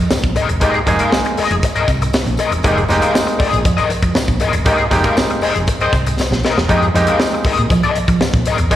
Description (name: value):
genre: funk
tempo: 119 BPM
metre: 4/4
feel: straight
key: F minor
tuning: A4 = 440 Hz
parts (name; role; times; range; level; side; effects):
- hollow-body short-scale fingered electric bass; bass; 0.0-8.7 s; E1 to F3; -18 LUFS; equal; none
- crunchy overdriven guitar; accompaniment; 0.1-8.8 s; Ab4 to F5; -19 LUFS; left 5 dB; wah, slapback echo
- tight funk drum kit; drums; 0.1-8.8 s; hi-hat, kick drum, snare drum; -18 LUFS; equal; none
- tambourine; percussion; 0.1-8.8 s; none; -34 LUFS; left 1 dB; none
- overdriven clav; stabs; 0.6-8.8 s; Ab3 to Ab4; -17 LUFS; right 2 dB; slapback echo
- clear horn section; second line; 5.4-6.0 s; C4 to C5; -23 LUFS; right 2 dB; slapback echo
room: light reverb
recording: live gig heard through the venue's PA, recital hall reverb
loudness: -13 LUFS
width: side -12 dB against mid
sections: 0.0-8.8 A section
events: band accent 4.7-6.7; drum fill 6.2-6.7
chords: 0.0 Fm11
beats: 0.11 | 0.62 1.12 1.63 2.13 | 2.64 3.15 3.65 4.16 | 4.66 5.17 5.67 6.18 | 6.68 7.19 7.70 8.20 | 8.71